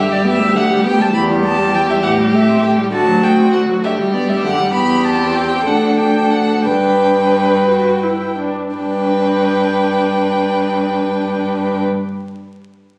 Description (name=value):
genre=quick classical-period movement for string quartet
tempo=54-68 BPM (dotted quarters)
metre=6/8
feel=straight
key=G major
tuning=A4 = 440 Hz
part: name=rich violin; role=melody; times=0.0-11.8 s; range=D5 to B5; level=-22 LUFS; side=equal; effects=none
part: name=warm violin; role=second line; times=0.0-11.8 s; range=F#4 to B4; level=-20 LUFS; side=equal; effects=none
part: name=rich viola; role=accompaniment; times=0.0-11.8 s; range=D3 to F#4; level=-22 LUFS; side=equal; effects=none
part: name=rich cello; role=bass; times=0.0-11.8 s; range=D2 to A2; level=-21 LUFS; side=equal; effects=none
room=wet recital hall reverb, RT60 1.7 s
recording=recorded on a phone in the room, club reverb, vinyl crackle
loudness=-15 LUFS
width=mono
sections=0.0-8.8 A section; 8.8-13.0 B section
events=slowing down 3.8-8.8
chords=0.0 G; 1.1 Em; 2.0 Am7; 2.9 D7; 3.8 G; 4.7 Em; 5.7 D5; 6.7 G